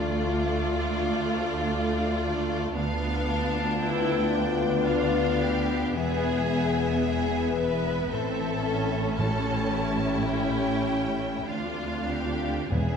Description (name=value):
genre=classical, slow romantic movement for symphony orchestra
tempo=56 BPM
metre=3/4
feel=rubato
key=unclear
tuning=A4 = 440 Hz
part: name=warm studio violin section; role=melody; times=0.0-13.0 s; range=D5 to A5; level=-36 LUFS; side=left 2 dB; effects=none
part: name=rich studio violin section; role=second line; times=0.0-13.0 s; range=D4 to B4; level=-32 LUFS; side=left 2 dB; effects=none
part: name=warm studio viola section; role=accompaniment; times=0.0-13.0 s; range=A3 to E4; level=-32 LUFS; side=right 3 dB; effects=none
part: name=mellow French horn section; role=sustained chords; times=0.0-13.0 s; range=A3 to A4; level=-30 LUFS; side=left 5 dB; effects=none
part: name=concert harp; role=arpeggios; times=0.0-13.0 s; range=A2 to D5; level=-33 LUFS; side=left 10 dB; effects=none
part: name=rich studio double bass section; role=bass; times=0.0-13.0 s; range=E1 to D2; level=-32 LUFS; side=right 4 dB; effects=none
part: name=warm studio cello section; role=bass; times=0.0-13.0 s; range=D2 to A2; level=-33 LUFS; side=right 2 dB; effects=none
part: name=timpani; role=percussion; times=9.2-13.0 s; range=E2 to A2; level=-30 LUFS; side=equal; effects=none
room=wet scoring stage reverb, RT60 1.6 s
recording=none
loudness=-24 LUFS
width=side -6 dB against mid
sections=0.0-13.0 A section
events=none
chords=0.0 Dm; 2.8 Bdim/D; 6.0 E; 8.1 Am; 9.2 A7; 11.5 Dm7